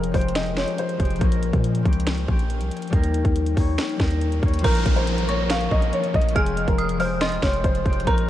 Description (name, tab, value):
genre	hip hop, trap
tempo	140 BPM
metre	4/4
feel	half-time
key	Bb dorian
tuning	A4 = 440 Hz
part	dark grand piano	melody	0.0-1.2, 4.6-8.3 s	Ab4 to F5	-27 LUFS	right 1 dB	analog delay
part	concert harp	accompaniment	0.0-8.3 s	F3 to Db5	-27 LUFS	left 6 dB	none
part	long sustained 808-style bass	bass	0.0-8.3 s	F1 to Bb2	-25 LUFS	equal	none
part	trap drum kit	drums	0.0-8.3 s	crash cymbal, finger snaps, hi-hat, kick drum, snare drum	-23 LUFS	equal	vintage 12-bit sampler grit
part	dark detuned synth bell	second line	4.6-8.3 s	Bb5 to F6	-29 LUFS	right 2 dB	chorus, tremolo, analog delay
part	downlifter	sound effects	4.6-8.1 s	none	-32 LUFS	right 1 dB	none
room	light reverb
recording	cassette tape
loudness	-19 LUFS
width	side -13 dB against mid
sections	0.0-4.6 A section; 4.6-8.3 B section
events	none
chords	0.0 Fmadd9; 1.2 Bbm; 2.9 Eb; 4.6 Bbm; 6.4 Fmadd9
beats	0.36 0.79 | 1.21 1.64 2.07 2.50 | 2.93 3.36 3.79 4.21 | 4.64 5.07 5.50 5.93 | 6.36 6.79 7.21 7.64 | 8.07